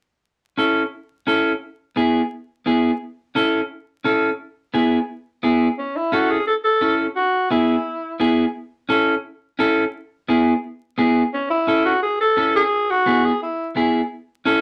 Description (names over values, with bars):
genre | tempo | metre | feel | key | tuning
latin | 173 BPM | 4/4 | straight | A major | A4 = 440 Hz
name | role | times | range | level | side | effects
clean electric guitar | accompaniment | 0.6-14.6 s | B3 to A4 | -20 LUFS | equal | none
growling alto saxophone | melody | 5.8-8.2, 11.3-13.7 s | C#4 to A4 | -21 LUFS | equal | none
room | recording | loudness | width
wet studio ambience, RT60 0.5 s | vinyl crackle | -20 LUFS | mono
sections
0.2-5.8 A section; 5.8-14.6 B section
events
none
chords
0.2 A; 1.6 E; 3.0 A; 4.4 E; 5.8 A; 7.2 E; 8.6 A; 9.9 E; 11.3 A; 12.7 E; 14.1 A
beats
| 0.23 0.58 0.93 1.27 | 1.62 1.97 2.32 2.66 | 3.01 3.36 3.70 4.05 | 4.40 4.74 5.09 5.43 | 5.78 6.13 6.47 6.82 | 7.17 7.51 7.86 8.20 | 8.55 8.90 9.24 9.59 | 9.94 10.29 10.63 10.98 | 11.33 11.68 12.02 12.37 | 12.72 13.07 13.41 13.76 | 14.11 14.46